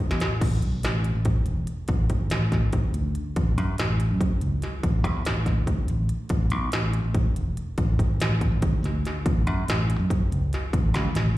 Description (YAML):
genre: math rock and midwest emo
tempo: 285 BPM (eighths)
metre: 7/8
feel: straight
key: A major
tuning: A4 = 440 Hz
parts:
  - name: fingered electric bass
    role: bass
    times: 0.1-11.4 s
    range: E1 to F#2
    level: -24 LUFS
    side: equal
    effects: none
  - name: industrial drum kit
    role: drums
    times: 0.1-11.4 s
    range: crash cymbal, hi-hat, kick drum, snare drum, toms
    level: -25 LUFS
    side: equal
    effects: none
room: little or no reverb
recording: live gig heard through the venue's PA, recital hall reverb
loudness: -22 LUFS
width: side -16 dB against mid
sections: 0.4-11.4 A section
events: drum fill 0.0-0.4, 10.9-11.4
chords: none